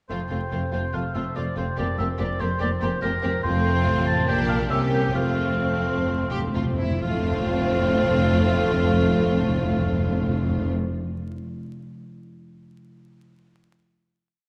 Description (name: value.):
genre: classical, dramatic, fast romantic movement for symphony orchestra.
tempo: 123-145 BPM.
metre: 4/4.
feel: straight.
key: F major.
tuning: A4 = 441 Hz.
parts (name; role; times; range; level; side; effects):
clear symphonic violin section; melody; 0.1-10.7 s; C4 to G4; -35 LUFS; equal; none.
rich symphonic violin section; second line; 0.1-10.7 s; C4 to D4; -33 LUFS; equal; none.
warm oboe; second line; 0.1-10.7 s; Bb4 to A5; -32 LUFS; equal; none.
dark symphonic viola section; accompaniment; 0.1-10.7 s; A3 to Bb3; -32 LUFS; equal; none.
concert harp; arpeggios; 0.1-11.0 s; F2 to C6; -32 LUFS; equal; none.
rich symphonic cello section; bass; 0.1-10.7 s; F2 to C3; -33 LUFS; equal; none.
rich symphonic double bass section; bass; 0.1-10.7 s; F1 to C2; -32 LUFS; equal; none.
timpani; percussion; 1.8-10.7 s; F2; -29 LUFS; equal; none.
room: wet concert hall reverb, RT60 2.3 s.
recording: vinyl crackle.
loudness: -23 LUFS.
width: mono.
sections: 0.1-7.0 A section; 7.0-10.8 final chord.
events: slowing down 2.6-7.0; timpani fill 5.2-7.0.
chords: 0.1 F; 1.8 C5/F; 3.5 F; 4.3 Gm/Bb; 4.7 C7b9; 5.2 F.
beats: | 0.11 0.53 0.95 1.37 | 1.79 2.21 2.62 3.04 | 3.45 3.87 4.29 4.72 | 5.17 5.62 6.08 6.55 | 7.03 7.51 7.98 8.45 | 8.92 9.39 9.87 10.34.